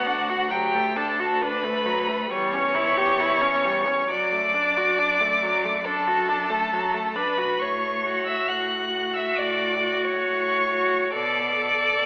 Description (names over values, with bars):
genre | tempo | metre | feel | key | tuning
classical, slow romantic movement for string quartet | 68 BPM | 4/4 | rubato | F# minor from 7.6 s | A4 = 440 Hz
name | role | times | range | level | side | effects
clear violin | melody | 0.0-12.1 s | F#5 to F#6 | -25 LUFS | left 1 dB | none
rich violin | second line | 0.0-12.1 s | F#4 to F#5 | -25 LUFS | equal | none
clear viola | accompaniment | 0.0-12.1 s | F#3 to A4 | -26 LUFS | equal | none
rich cello | bass | 0.0-12.1 s | D2 to B2 | -34 LUFS | equal | none
room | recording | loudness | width
wet recital hall reverb, RT60 1.5 s | telephone sound | -20 LUFS | side -30 dB against mid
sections
0.0-12.1 A section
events
none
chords
0.0 Bm/D (rootless); 0.5 D; 2.3 C#dim/E; 4.1 D/F#; 7.6 F#m/A; 11.1 Bm7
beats
| 0.51 1.41 2.31 3.20 | 4.09 4.98 5.85 6.71 | 7.59 8.47 9.35 10.25 | 11.12 11.98